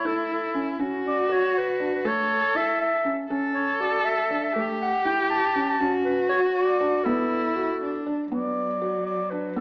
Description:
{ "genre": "contemporary instrumental, chamber music in an uneven meter", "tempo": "240 BPM (eighths)", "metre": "5/8", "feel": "straight", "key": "unclear", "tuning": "A4 = 441 Hz", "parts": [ { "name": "mellow clarinet", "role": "melody", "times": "0.0-9.6 s", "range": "A4 to A5", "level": "-25 LUFS", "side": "equal", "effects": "none" }, { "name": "dark cello", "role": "second line", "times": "0.0-9.6 s", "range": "F#3 to A4", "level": "-26 LUFS", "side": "equal", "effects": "none" }, { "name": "felt-muted upright piano", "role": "arpeggios", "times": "0.0-9.6 s", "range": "A3 to F#4", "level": "-29 LUFS", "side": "equal", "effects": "none" } ], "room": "moderate recital hall reverb, RT60 1.6 s", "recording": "small speaker sound", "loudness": "-22 LUFS", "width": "side -31 dB against mid", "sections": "0.0-8.3 A section; 8.3-9.6 B section", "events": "none", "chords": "0.0 A; 0.8 Dmaj7; 2.1 A; 3.3 Dmaj7; 4.6 A; 5.8 Dmaj7; 7.1 Bm" }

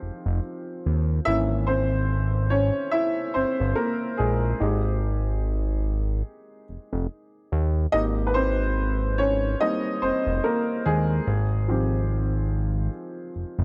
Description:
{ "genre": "R&B, neo-soul", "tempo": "72 BPM", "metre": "4/4", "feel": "swing 57% on 16ths", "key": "unclear", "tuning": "A4 = 442 Hz", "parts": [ { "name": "warm upright piano", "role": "accompaniment", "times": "0.0-13.6 s", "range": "Eb3 to E5", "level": "-28 LUFS", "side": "equal", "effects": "none" }, { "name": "fat analog bass", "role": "bass", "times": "0.0-13.6 s", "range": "F1 to Eb2", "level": "-26 LUFS", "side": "equal", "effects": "none" } ], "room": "light reverb, studio reverb", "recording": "none", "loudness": "-25 LUFS", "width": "mono", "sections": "0.0-13.6 A section", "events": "upright piano solo 0.0-13.6", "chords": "0.0 Fm9; 1.3 C7b9/Ab; 4.6 Fm7/Ab; 7.9 Abmaj9; 11.3 Fm9" }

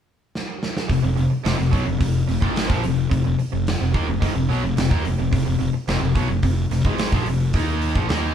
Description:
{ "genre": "classic rock", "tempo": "108 BPM", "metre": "4/4", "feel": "straight", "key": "unclear", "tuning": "A4 = 440 Hz", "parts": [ { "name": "big rock drum kit", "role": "drums", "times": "0.4-8.2 s", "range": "hi-hat, kick drum, snare drum", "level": "-24 LUFS", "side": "right 1 dB", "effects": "none" }, { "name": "crunchy overdriven guitar", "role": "riff", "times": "0.9-8.3 s", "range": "F2 to Eb4", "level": "-24 LUFS", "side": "left 6 dB", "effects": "none" }, { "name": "overdriven electric guitar", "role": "riff", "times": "0.9-8.3 s", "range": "F2 to Eb4", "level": "-25 LUFS", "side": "right 4 dB", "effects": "none" }, { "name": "fuzz fingered electric bass", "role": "bass", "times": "0.9-8.3 s", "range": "F1 to Eb2", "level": "-25 LUFS", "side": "right 1 dB", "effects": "overdrive" } ], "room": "moderate studio reverb, RT60 0.6 s", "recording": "band playing live in one room", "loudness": "-18 LUFS", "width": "side -9 dB against mid", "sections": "0.9-8.3 A section", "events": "drum fill 0.3-0.9", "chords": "0.0 N.C.; 0.9 F5" }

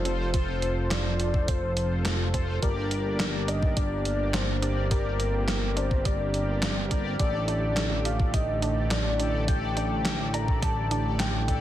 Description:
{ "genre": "synthwave", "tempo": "105 BPM", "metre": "4/4", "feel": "straight", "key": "G minor", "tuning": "A4 = 441 Hz", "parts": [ { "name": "soft octave-layered synth lead", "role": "melody", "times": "0.0-11.6 s", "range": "A4 to Bb5", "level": "-33 LUFS", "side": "left 2 dB", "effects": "chorus, tremolo, tape echo" }, { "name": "FM electric piano with soft pad layer", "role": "second line", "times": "0.0-11.6 s", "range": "A4 to Bb5", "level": "-40 LUFS", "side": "equal", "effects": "none" }, { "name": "warm analog pad", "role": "sustained chords", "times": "0.0-11.6 s", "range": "D3 to C5", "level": "-35 LUFS", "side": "right 2 dB", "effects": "chorus, sidechain pumping" }, { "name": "analog pluck", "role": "arpeggios", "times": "0.0-11.6 s", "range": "F3 to D4", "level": "-40 LUFS", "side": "right 5 dB", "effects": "none" }, { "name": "fat analog bass", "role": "bass", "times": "0.0-11.6 s", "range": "F1 to A1", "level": "-28 LUFS", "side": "equal", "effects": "sidechain pumping" }, { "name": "mellow synth brass", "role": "stabs", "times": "0.1-11.6 s", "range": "F4 to D5", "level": "-36 LUFS", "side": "left 4 dB", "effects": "chorus, vintage 12-bit sampler grit, digital delay" }, { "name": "gated 80s digital drum machine", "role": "drums", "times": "0.1-11.6 s", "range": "handclaps, hi-hat, snare drum", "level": "-32 LUFS", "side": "equal", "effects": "gated reverb, gated reverb snare, studio ambience" }, { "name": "electronic kick drum", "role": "drums", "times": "0.3-11.6 s", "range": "none", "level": "-26 LUFS", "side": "equal", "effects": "studio ambience" } ], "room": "light reverb, digital ambience", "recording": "dense, heavily limited modern master", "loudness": "-24 LUFS", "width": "side -12 dB against mid", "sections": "0.0-11.6 A section", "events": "none", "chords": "0.0 F; 2.6 Gm; 7.2 Dsus4/A" }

